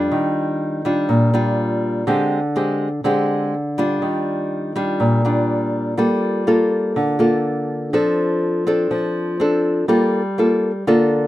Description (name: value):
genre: bossa nova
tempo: 123 BPM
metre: 4/4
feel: straight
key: G minor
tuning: A4 = 440 Hz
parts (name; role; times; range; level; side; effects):
- nylon-string guitar; solo; 0.0-11.3 s; Bb2 to A4; -16 LUFS; equal; none
room: little or no reverb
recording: close, detailed microphones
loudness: -17 LUFS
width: side -15 dB against mid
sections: 0.0-11.3 A section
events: none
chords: 0.1 Ebmaj9; 2.1 Fm69/D; 4.0 Ebmaj9; 6.0 Gm9; 7.9 Dm7/F; 9.9 Gm9